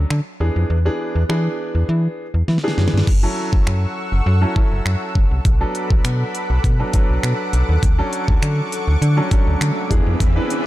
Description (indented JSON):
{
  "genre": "dance-pop",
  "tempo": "101 BPM",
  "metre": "4/4",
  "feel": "straight",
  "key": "F# minor",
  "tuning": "A4 = 440 Hz",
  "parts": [
    { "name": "clear baby grand piano", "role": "accompaniment", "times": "0.0-10.7 s", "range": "E3 to B4", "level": "-25 LUFS", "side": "equal", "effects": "sidechain pumping" },
    { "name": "slap-like FM bass", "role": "bass", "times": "0.0-10.4 s", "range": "F#1 to E3", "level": "-17 LUFS", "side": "equal", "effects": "sidechain pumping" },
    { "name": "pop drum kit", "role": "drums", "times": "0.1-10.6 s", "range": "crash cymbal, finger snaps, hi-hat, kick drum, snare drum", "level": "-19 LUFS", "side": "equal", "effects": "none" },
    { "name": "lush unison pad", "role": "sustained chords", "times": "3.1-10.7 s", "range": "G#4 to E6", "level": "-28 LUFS", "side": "equal", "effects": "chorus, sidechain pumping" },
    { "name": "riser", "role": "sound effects", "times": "8.6-10.7 s", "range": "none", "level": "-29 LUFS", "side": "right 2 dB", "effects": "none" }
  ],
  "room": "digital ambience",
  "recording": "dark, warm production",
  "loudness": "-16 LUFS",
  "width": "side -15 dB against mid",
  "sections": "0.0-3.1 A section; 3.1-10.7 B section",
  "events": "drum fill 2.5-3.1; riser 8.6-10.7",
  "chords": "0.4 E7; 3.1 F#m7; 5.5 Bm7; 7.8 Dmaj7; 9.9 E7"
}